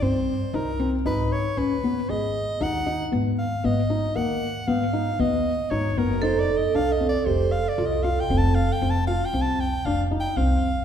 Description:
contemporary instrumental, chamber music in an uneven meter; 116 BPM; 5/4; straight; A4 = 440 Hz
warm soprano saxophone; melody; 0.0-10.8 s; Bb4 to A5; -28 LUFS; right 1 dB
felt-muted upright piano; arpeggios; 0.0-10.7 s; Bb3 to Ab4; -26 LUFS; left 3 dB
upright bass; bass; 0.0-10.8 s; F1 to G2; -26 LUFS; equal
vibraphone with medium hard mallets; second line; 6.2-8.8 s; A4; -26 LUFS; right 9 dB
wet concert hall reverb, RT60 1.7 s; heard from further back in the room; -21 LUFS; side -9 dB against mid
0.0-10.8 A section
0.0 Cm; 1.1 Abm; 6.2 F

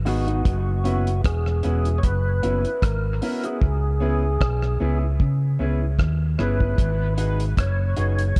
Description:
dub reggae; 76 BPM; 4/4; swing 55% on 16ths; A4 = 439 Hz
hollow-body short-scale fingered electric bass; bass; 0.0-8.4 s; E1 to C#3; -24 LUFS; equal
tonewheel organ; melody; 0.1-8.4 s; F#4 to C#5; -31 LUFS; equal; overdrive, chorus vibrato, slow rotary speaker, dub echo
mellow electric guitar; accompaniment; 0.1-6.7 s; B3 to G#4; -34 LUFS; equal; dub echo
clear upright piano; stabs; 0.1-8.2 s; C#4 to B4; -35 LUFS; equal; dub echo
cloth-damped thuddy drum kit; drums; 0.1-8.4 s; hi-hat, kick drum, rim click; -25 LUFS; equal
light reverb, small room ambience; dark, warm production; -22 LUFS; mono
0.0-8.4 A section
hi-hats muted 3.6-6.8
0.5 F#7sus4; 3.6 C#m7; 6.8 G#m7

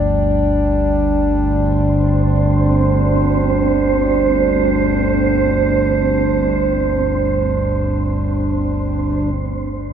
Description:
dark ambient drone; free time; A4 = 440 Hz
dark analog pad; sustained chords; 0.0-9.9 s; G3 to G5; -18 LUFS; right 1 dB; chorus
analog drone; drone; 0.0-9.9 s; G1 to D2; -18 LUFS; equal; wide subtle chorus
wind-like tuned noise texture; texture; 1.9-9.4 s; C4 to C5; -21 LUFS; right 5 dB; built-in reverb
wet cathedral reverb, RT60 5.7 s; nothing above 7.5 kHz; -14 LUFS; side -8 dB against mid
0.0-9.4 A section
filter sweep on synth drone 0.0-9.4
0.0 G5

